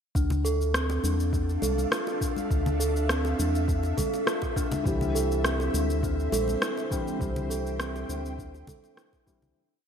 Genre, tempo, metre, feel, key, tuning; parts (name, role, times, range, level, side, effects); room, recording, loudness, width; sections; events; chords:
organic downtempo; 102 BPM; 4/4; swing 53% on 16ths; D minor; A4 = 440 Hz
ethereal airy pad; sustained chords; 1.2-9.6 s; C4 to G5; -35 LUFS; equal; ensemble chorus, built-in reverb, sidechain pumping
round analog bass; bass; 0.1-9.5 s; Bb1 to E2; -29 LUFS; equal
steel tongue drum; arpeggios; 0.2-9.6 s; C4 to A4; -30 LUFS; right 1 dB; ping-pong delay
electronic kick drum; drums; 0.2-9.4 s; -30 LUFS; equal; overdrive, studio reverb
electronic shaker and rim click; drums; 0.2-9.5 s; -32 LUFS; equal; studio reverb, gated reverb
congas and bongos; percussion; 0.3-9.5 s; -36 LUFS; left 2 dB
felt-muted upright piano; accompaniment; 4.8-9.6 s; E3 to G4; -35 LUFS; left 2 dB; sidechain pumping, ping-pong delay
light reverb, small room ambience; bright 1980s-style digital production; -25 LUFS; side -8 dB against mid
0.2-9.6 groove
fade-out 6.4-9.6
0.2 Dmadd9; 4.9 C